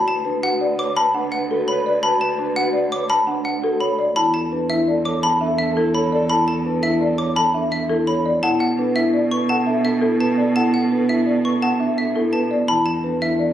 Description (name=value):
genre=classical, minimalist pattern music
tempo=169 BPM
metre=6/4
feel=straight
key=unclear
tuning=A4 = 441 Hz
part: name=folk marimba with medium mallets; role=melody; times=0.0-13.5 s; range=A4 to A5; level=-22 LUFS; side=left 2 dB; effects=none
part: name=clear French horn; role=second line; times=0.0-13.5 s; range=A4 to B4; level=-30 LUFS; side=right 2 dB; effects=none
part: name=marimba with soft mallets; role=arpeggios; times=0.0-13.4 s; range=D4 to C#5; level=-23 LUFS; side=equal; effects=none
part: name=xylophone with plastic mallets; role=arpeggios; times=0.0-13.4 s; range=E5 to D6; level=-24 LUFS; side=equal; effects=none
part: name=rich cello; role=bass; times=0.0-13.5 s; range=D2 to B2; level=-23 LUFS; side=right 3 dB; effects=none
room=wet large studio reverb, RT60 1.3 s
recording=recorded on a phone in the room, club reverb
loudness=-17 LUFS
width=side -11 dB against mid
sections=0.0-13.5 A section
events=none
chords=0.0 D6; 4.2 E7sus4; 8.4 Bm7; 12.7 E7sus4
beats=0.26 0.61 0.97 1.32 1.68 | 2.03 2.39 2.74 3.10 3.45 3.81 | 4.16 4.52 4.87 5.23 5.58 5.94 | 6.29 6.65 7.00 7.36 7.71 8.07 | 8.42 8.78 9.13 9.49 9.84 10.20 | 10.55 10.91 11.26 11.62 11.97 12.33 | 12.68 13.04 13.39